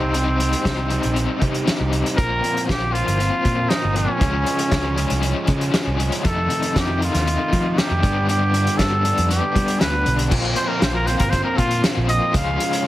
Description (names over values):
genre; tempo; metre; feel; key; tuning
indie rock; 118 BPM; 4/4; straight; unclear; A4 = 441 Hz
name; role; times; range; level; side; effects
clear trumpet; melody; 0.0-12.9 s; C4 to F5; -23 LUFS; equal; slapback echo, plate reverb
overdriven electric guitar; riff; 0.0-12.9 s; F2 to F4; -25 LUFS; left 6 dB; tremolo
overdriven semi-hollow guitar; riff; 0.0-12.9 s; F2 to Eb4; -27 LUFS; right 5 dB; lush chorus, slapback echo
picked electric bass; bass; 0.0-12.6 s; G1 to G3; -22 LUFS; equal; none
vintage drum kit; drums; 0.1-12.8 s; crash cymbal, hi-hat, kick drum, snare drum; -23 LUFS; equal; none
room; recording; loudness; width
light reverb; heavily compressed radio sound, multiband compression; -17 LUFS; side -15 dB against mid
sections
0.0-10.3 A section; 10.3-12.9 B section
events
trumpet solo 10.3-12.9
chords
0.0 Cm; 2.2 Bbsus2; 4.2 Db; 6.2 F7; 8.0 G; 10.3 Bbsus2; 12.3 Db